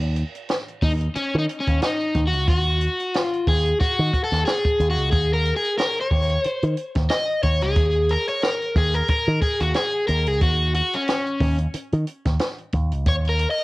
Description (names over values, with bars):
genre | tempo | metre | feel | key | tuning
funk | 91 BPM | 4/4 | swing 56% on 16ths | Eb minor | A4 = 438 Hz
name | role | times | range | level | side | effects
picked electric bass with an envelope filter | bass | 0.0-13.5 s | Db2 to Eb3 | -22 LUFS | equal | none
compact cocktail drum kit | drums | 0.0-13.6 s | hi-hat, kick drum, snare drum | -24 LUFS | equal | cassette tape
crunchy overdriven guitar | accompaniment | 0.8-13.6 s | Db4 to Eb5 | -22 LUFS | left 1 dB | spring reverb, plate reverb
room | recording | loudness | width
light reverb | home recording on cassette | -19 LUFS | side -20 dB against mid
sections
0.0-13.6 A section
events
overdriven electric guitar solo 0.0-13.6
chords
0.0 Ebm7